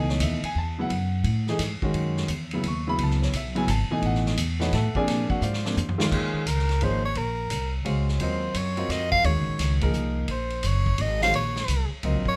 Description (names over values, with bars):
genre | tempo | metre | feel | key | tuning
modal jazz | 173 BPM | 3/4 | swing 64% on 8ths | F# dorian, Eb dorian from 6.1 s | A4 = 440 Hz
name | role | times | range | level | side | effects
warm concert grand piano | accompaniment | 0.0-12.4 s | B2 to C#6 | -30 LUFS | equal | none
upright bass | bass | 0.0-12.4 s | Gb1 to A#2 | -29 LUFS | equal | none
vintage drum kit | drums | 0.1-12.3 s | crash cymbal, hi-hat, kick drum, ride cymbal, snare drum, toms | -34 LUFS | equal | none
warm soprano saxophone | melody | 6.1-12.4 s | Ab4 to F5 | -30 LUFS | equal | none
room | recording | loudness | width
moderate studio reverb, RT60 0.7 s | none | -25 LUFS | mono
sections
0.0-6.1 A section; 6.1-12.4 A section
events
drum fill 5.4-6.1; soprano saxophone solo 6.1-12.4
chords
0.0 F#m11; 5.1 A#9; 6.1 Eb9sus4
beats
0.21 0.56 | 0.91 1.26 1.60 | 1.95 2.30 2.64 | 2.99 3.34 3.69 | 4.03 4.38 4.73 | 5.07 5.42 5.77 | 6.12 6.46 6.81 | 7.16 7.50 7.85 | 8.20 8.55 8.90 | 9.24 9.59 9.94 | 10.29 10.64 10.98 | 11.33 11.68 12.03